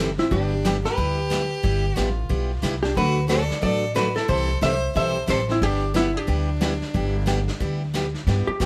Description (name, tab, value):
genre	country, western swing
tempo	181 BPM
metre	4/4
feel	swing 61% on 8ths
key	G major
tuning	A4 = 444 Hz
part	picked steel-string acoustic guitar	accompaniment	0.0-8.7 s	C3 to B4	-29 LUFS	equal	none
part	upright bass	bass	0.0-8.7 s	G1 to G2	-27 LUFS	equal	none
part	hollow-body jazz guitar	melody	0.2-8.7 s	E4 to E5	-27 LUFS	equal	none
part	clear fiddle	second line	0.2-7.9 s	B3 to C5	-32 LUFS	equal	none
part	vintage brush drum kit	drums	0.2-8.7 s	brushed snare drum, hi-hat, kick drum, snare drum	-34 LUFS	equal	none
room	light reverb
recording	none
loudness	-23 LUFS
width	mono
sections	0.0-8.3 A section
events	none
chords	0.3 G6; 3.0 D6; 4.3 C6; 5.6 G6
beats	| 0.31 0.64 0.97 1.31 | 1.64 1.97 2.30 2.63 | 2.96 3.30 3.63 3.96 | 4.29 4.62 4.96 5.29 | 5.62 5.95 6.28 6.61 | 6.95 7.28 7.61 7.94 | 8.27 8.60